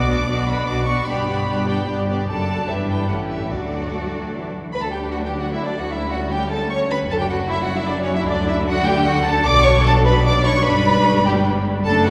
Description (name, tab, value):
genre	quick classical-period movement for string orchestra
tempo	151 BPM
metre	3/4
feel	straight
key	D major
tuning	A4 = 440 Hz
part	rich chamber violin section	melody	0.0-12.1 s	C#5 to D6	-26 LUFS	equal	none
part	rich chamber violin section	second line	0.0-12.1 s	C#4 to D5	-26 LUFS	equal	none
part	rich chamber viola section	accompaniment	0.0-12.1 s	E3 to D4	-28 LUFS	equal	none
part	rich studio double bass section	bass	0.0-12.1 s	F#1 to D2	-25 LUFS	equal	none
part	rich symphonic cello section	bass	0.0-12.1 s	D2 to A3	-28 LUFS	equal	none
room	wet church reverb, RT60 4.0 s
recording	recorded in a church or concert hall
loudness	-19 LUFS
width	mono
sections	0.0-4.7 A section; 4.7-12.1 B section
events	none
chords	0.0 Bm; 1.1 G; 2.3 D/F#; 2.7 Em7/G; 3.1 A7; 3.5 D; 5.9 Gmaj7sus2/D; 7.1 D/F#; 8.3 D; 9.5 Bm; 10.7 G